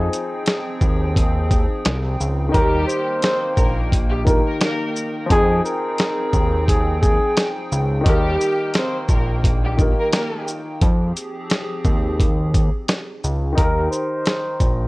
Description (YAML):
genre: hip hop, boom-bap hip-hop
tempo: 87 BPM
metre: 4/4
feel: swing 57% on 16ths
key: F minor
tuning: A4 = 440 Hz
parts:
  - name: warm baby grand piano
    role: accompaniment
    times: 0.0-14.9 s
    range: Eb3 to Bb4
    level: -26 LUFS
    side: left 2 dB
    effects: high-pass filter, low-pass filter
  - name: hollow soft pad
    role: sustained chords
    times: 0.0-13.6 s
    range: F3 to G5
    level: -29 LUFS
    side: equal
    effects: chorus, high-pass filter, low-pass filter
  - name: fat analog bass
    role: bass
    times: 0.0-14.9 s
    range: Bb1 to F2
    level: -21 LUFS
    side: equal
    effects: none
  - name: dusty soul sampler-style drum kit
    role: drums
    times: 0.1-14.8 s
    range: hi-hat, kick drum, shaker, snare drum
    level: -19 LUFS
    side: equal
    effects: none
  - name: trumpet with bucket mute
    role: melody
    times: 2.5-7.5, 13.6-14.9 s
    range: Ab4 to C5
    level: -22 LUFS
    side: equal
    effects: high-pass filter, low-pass filter, tape echo
  - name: warm studio string section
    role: stabs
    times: 2.5-10.4 s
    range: G3 to C5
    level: -25 LUFS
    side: equal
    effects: high-pass filter, low-pass filter, tape echo
room: studio reverb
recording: worn, warbling old tape, cassette tape, warbly pitch drift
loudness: -17 LUFS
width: side -22 dB against mid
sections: 0.0-13.6 A section; 13.6-14.9 B section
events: none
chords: 0.0 Fm7; 2.5 Eb; 5.3 Fm7; 8.1 Eb; 10.8 Fm7; 13.6 Eb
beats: 0.47 1.16 1.85 | 2.54 3.23 3.92 4.61 | 5.30 5.99 6.68 7.37 | 8.06 8.75 9.44 10.13 | 10.82 11.51 12.20 12.89 | 13.58 14.27